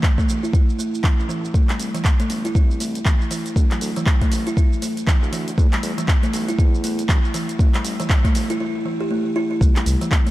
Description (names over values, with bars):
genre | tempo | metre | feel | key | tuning
afro house | 119 BPM | 4/4 | swing 60% on 16ths | A minor | A4 = 443 Hz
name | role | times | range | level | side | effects
buzzing kalimba | arpeggios | 0.0-10.3 s | E3 to G4 | -23 LUFS | equal | sidechain pumping, digital delay
deep house drum kit | drums | 0.0-10.3 s | handclaps, hi-hat, shaker | -27 LUFS | equal | high-pass filter on snare, high-pass filter on perc, high-pass filter on hats, high-pass filter on room
electronic kick drum | drums | 0.0-10.2 s | none | -16 LUFS | equal | none
smooth synth bass | bass | 0.3-10.0 s | E1 to E2 | -29 LUFS | equal | sidechain pumping, high-pass filter
room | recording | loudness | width
light reverb | dark, warm production | -17 LUFS | side -16 dB against mid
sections
0.0-9.6 A section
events
build-up 0.0-9.6; filter sweep on kalimba 0.0-9.6; break 8.6-9.6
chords
0.0 A5; 1.5 C; 3.6 D5; 5.6 N.C.; 7.6 A5; 9.6 C